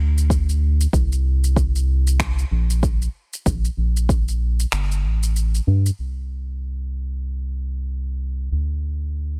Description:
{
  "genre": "organic downtempo",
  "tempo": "95 BPM",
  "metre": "4/4",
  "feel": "swing 59% on 16ths",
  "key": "unclear",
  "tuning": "A4 = 441 Hz",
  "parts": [
    { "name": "round analog bass", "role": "bass", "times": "0.0-9.4 s", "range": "G1 to G2", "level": "-22 LUFS", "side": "equal", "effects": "sidechain pumping" },
    { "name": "electronic shaker and finger snaps", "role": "drums", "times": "0.2-6.0 s", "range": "none", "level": "-31 LUFS", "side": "equal", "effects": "overdrive" },
    { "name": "electronic kick drum", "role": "drums", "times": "0.3-4.2 s", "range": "none", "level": "-23 LUFS", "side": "equal", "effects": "overdrive" }
  ],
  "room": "digital ambience",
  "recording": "none",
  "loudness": "-22 LUFS",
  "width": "mono",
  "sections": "0.0-6.0 A section; 6.0-9.4 B section",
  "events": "kick drops out 4.7-6.0",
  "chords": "none"
}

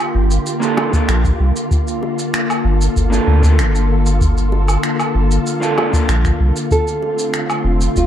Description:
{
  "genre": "sunset chillout",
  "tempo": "96 BPM",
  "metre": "4/4",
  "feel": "straight",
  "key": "G minor",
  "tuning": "A4 = 439 Hz",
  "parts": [
    { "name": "soft string machine", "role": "sustained chords", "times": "0.0-8.1 s", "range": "D3 to A4", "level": "-21 LUFS", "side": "left 2 dB", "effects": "ensemble chorus" },
    { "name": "electronic shaker, woodblock and finger snaps", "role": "drums", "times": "0.0-8.1 s", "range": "none", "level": "-24 LUFS", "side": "right 2 dB", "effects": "none" },
    { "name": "wind-like tuned noise texture", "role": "texture", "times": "0.0-8.1 s", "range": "F4", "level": "-28 LUFS", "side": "right 3 dB", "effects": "built-in reverb" },
    { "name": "warm sub bass", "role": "bass", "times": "0.1-8.1 s", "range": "F1 to D2", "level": "-14 LUFS", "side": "equal", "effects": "none" },
    { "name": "electric guitar at the edge of break-up", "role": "accompaniment", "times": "0.6-6.1 s", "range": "Bb3 to A4", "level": "-20 LUFS", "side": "moving between left 3 dB and right 3 dB", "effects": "auto-pan, low-pass filter, tape echo" },
    { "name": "bongos", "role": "percussion", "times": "0.8-7.2 s", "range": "none", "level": "-26 LUFS", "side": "equal", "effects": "none" },
    { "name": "electronic kick drum", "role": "drums", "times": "0.9-8.1 s", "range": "none", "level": "-17 LUFS", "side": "equal", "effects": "none" },
    { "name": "nylon-string guitar", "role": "melody", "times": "6.7-8.1 s", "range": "F4 to A4", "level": "-19 LUFS", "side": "right 2 dB", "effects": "none" }
  ],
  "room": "moderate lush hall reverb, RT60 1.7 s, digital ambience",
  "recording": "dark, warm production",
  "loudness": "-14 LUFS",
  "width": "side -10 dB against mid",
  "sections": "0.0-8.1 A section",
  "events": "none",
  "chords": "0.0 Gm7; 6.7 F6"
}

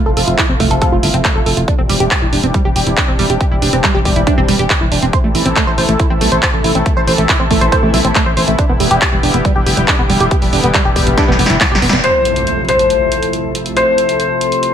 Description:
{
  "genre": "uplifting trance",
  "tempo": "139 BPM",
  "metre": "4/4",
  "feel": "straight",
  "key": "unclear",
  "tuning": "A4 = 441 Hz",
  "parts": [
    { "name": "lush unison pad", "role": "sustained chords", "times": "0.0-14.7 s", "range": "C3 to A4", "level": "-19 LUFS", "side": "left 1 dB", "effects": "chorus, sidechain pumping" },
    { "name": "tight sequenced synth", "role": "arpeggios", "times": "0.0-12.0 s", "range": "G3 to C5", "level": "-17 LUFS", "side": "right 2 dB", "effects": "chorus, cassette tape, sidechain pumping, dub echo" },
    { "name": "solid FM bass", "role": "bass", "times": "0.1-12.0 s", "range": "E1 to B1", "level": "-17 LUFS", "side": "equal", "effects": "sidechain pumping" },
    { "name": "punchy analog drum machine", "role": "drums", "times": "0.2-14.7 s", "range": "handclaps, hi-hat, snare drum", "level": "-17 LUFS", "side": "equal", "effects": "sidechain pumping on hats" },
    { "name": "electronic kick drum", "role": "drums", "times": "0.4-11.7 s", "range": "none", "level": "-16 LUFS", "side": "equal", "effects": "none" },
    { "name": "felt-muted upright piano", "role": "second line", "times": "12.0-14.7 s", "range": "C5", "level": "-13 LUFS", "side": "left 3 dB", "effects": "ping-pong delay" },
    { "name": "impact", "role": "sound effects", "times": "12.0-13.8 s", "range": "none", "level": "-23 LUFS", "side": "equal", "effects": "none" }
  ],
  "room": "moderate digital room reverb, RT60 1.2 s",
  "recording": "none",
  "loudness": "-11 LUFS",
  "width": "side -9 dB against mid",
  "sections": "0.0-12.0 A section; 12.0-14.7 B section",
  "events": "filter sweep on analog synth pad 0.0-12.0, 12.0-14.7; drum fill 11.2-12.0; band accent 11.9; impact 12.0-13.8",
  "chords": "0.0 Fmaj7; 1.7 Cadd9/E; 5.1 Am; 8.6 Em7; 12.0 Fmaj7"
}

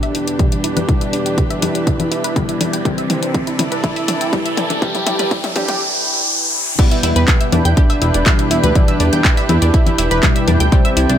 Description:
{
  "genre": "melodic techno",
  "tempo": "122 BPM",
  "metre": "4/4",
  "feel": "straight",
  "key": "E minor",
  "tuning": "A4 = 440 Hz",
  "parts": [
    { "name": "fat analog lead", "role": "melody", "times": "0.0-11.2 s", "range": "B3 to G4", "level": "-23 LUFS", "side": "right 1 dB", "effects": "sidechain pumping, ping-pong delay" },
    { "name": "lush unison pad", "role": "sustained chords", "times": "0.0-11.2 s", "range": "C2 to G5", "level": "-26 LUFS", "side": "left 1 dB", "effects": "chorus, sidechain pumping" },
    { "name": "wide unison pluck", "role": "arpeggios", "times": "0.0-11.1 s", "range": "D4 to G6", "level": "-23 LUFS", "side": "right 1 dB", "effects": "sidechain pumping, dub echo" },
    { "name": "synth brass stab", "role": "stabs", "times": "0.0-11.2 s", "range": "B2 to G3", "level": "-26 LUFS", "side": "left 5 dB", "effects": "chorus, sidechain pumping" },
    { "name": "house drum kit", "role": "drums", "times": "0.0-11.2 s", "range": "congas, crash cymbal, handclaps, hi-hat, toms", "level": "-20 LUFS", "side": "left 2 dB", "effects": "sidechain pumping on hats, sidechain pumping on toms, sidechain pumping on perc, sidechain pumping on cymbals" },
    { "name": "riser", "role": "sound effects", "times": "2.2-6.8 s", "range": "none", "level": "-22 LUFS", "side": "equal", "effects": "none" },
    { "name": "warm chamber string section", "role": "texture", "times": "0.0-11.2 s", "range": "C3 to D5", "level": "-25 LUFS", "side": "right 3 dB", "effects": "sidechain pumping" },
    { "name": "electronic kick drum", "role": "drums", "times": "0.4-10.8 s", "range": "none", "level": "-15 LUFS", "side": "equal", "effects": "none" },
    { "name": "plucky analog bass", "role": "bass", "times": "7.0-11.2 s", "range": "E1 to E2", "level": "-15 LUFS", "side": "equal", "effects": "sidechain pumping" }
  ],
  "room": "light reverb, digital ambience",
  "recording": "high-pass filter",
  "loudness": "-13 LUFS",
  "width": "side -10 dB against mid",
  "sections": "0.0-6.8 A section; 6.8-11.2 B section",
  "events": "build-up 0.0-6.8; drum fill 0.0-5.8; filter sweep on synth pluck 0.0-6.8; filter sweep on synth stab 0.0-6.8; filter sweep 0.0-6.8; riser 2.2-6.8; drop 6.8-11.2",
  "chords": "0.0 Em; 2.9 C; 6.8 Em"
}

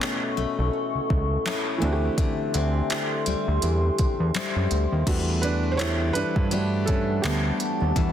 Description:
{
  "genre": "contemporary R&B",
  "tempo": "83 BPM",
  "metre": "4/4",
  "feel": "swing 58% on 16ths",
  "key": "unclear",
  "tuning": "A4 = 440 Hz",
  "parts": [
    { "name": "felt-muted upright piano", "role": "accompaniment", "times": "0.0-8.1 s", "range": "E3 to C#5", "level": "-30 LUFS", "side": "right 4 dB", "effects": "none" },
    { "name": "deep dark ambient pad", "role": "sustained chords", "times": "0.0-8.1 s", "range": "G3 to C#6", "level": "-30 LUFS", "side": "equal", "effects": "chorus, built-in reverb" },
    { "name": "picked steel-string acoustic guitar", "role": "arpeggios", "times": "0.0-8.1 s", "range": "B2 to G4", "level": "-30 LUFS", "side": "left 7 dB", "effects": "digital delay" },
    { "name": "smooth R&B drum kit", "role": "drums", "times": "0.0-8.1 s", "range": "crash cymbal, handclaps, hi-hat, kick drum", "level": "-28 LUFS", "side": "equal", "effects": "none" },
    { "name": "fat analog bass", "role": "bass", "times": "0.4-8.1 s", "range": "B1 to G2", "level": "-25 LUFS", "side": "equal", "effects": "none" }
  ],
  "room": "light reverb, digital ambience",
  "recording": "dense, heavily limited modern master",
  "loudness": "-22 LUFS",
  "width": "side -10 dB against mid",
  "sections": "0.0-5.1 A section; 5.1-8.1 B section",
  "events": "felt piano solo 5.1-8.1",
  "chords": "0.0 B9sus4; 1.8 D9sus4"
}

